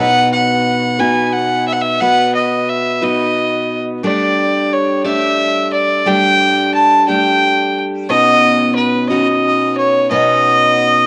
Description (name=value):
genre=acoustic folk duo or small band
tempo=59 BPM (dotted quarters)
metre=6/8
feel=straight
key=unclear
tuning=A4 = 439 Hz
part: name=warm fiddle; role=melody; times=0.0-11.1 s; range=B4 to A5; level=-15 LUFS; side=equal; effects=cassette tape
part: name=picked steel-string acoustic guitar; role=accompaniment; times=0.0-11.1 s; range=B2 to D5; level=-19 LUFS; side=equal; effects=cassette tape
room=moderate spring reverb, RT60 2.4 s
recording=home recording on cassette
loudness=-14 LUFS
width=mono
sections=0.0-11.1 A section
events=none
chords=0.0 B; 4.0 Gsus2; 8.1 Badd9